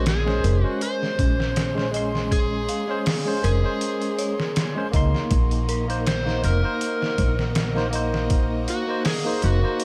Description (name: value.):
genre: trip hop.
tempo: 80 BPM.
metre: 4/4.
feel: swing 54% on 16ths.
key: Bb minor.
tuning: A4 = 442 Hz.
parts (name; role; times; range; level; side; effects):
overdriven slide guitar; melody; 0.0-9.8 s; Gb4 to C5; -31 LUFS; equal; tape echo.
barky tine electric piano; accompaniment; 0.0-9.8 s; Ab3 to C6; -30 LUFS; equal; harmonic tremolo, tape echo.
clear studio violin section; sustained chords; 0.0-9.8 s; Bb3 to C6; -39 LUFS; equal; none.
dark detuned synth bell; arpeggios; 0.0-9.8 s; Db4 to F5; -36 LUFS; equal; chorus, tape echo.
upright bass; bass; 0.0-9.6 s; F1 to Db2; -26 LUFS; equal; none.
trip hop sampler-style drum kit; drums; 0.1-9.8 s; hi-hat, kick drum, snare drum; -27 LUFS; equal; none.
room: little or no reverb.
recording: none.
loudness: -23 LUFS.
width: mono.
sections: 0.0-9.8 A section.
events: none.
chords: 0.0 Bbm9; 5.3 Cm7b5.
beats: 0.06 0.81 1.56 | 2.31 3.06 3.81 4.56 | 5.31 6.06 6.81 7.56 | 8.31 9.06 9.81.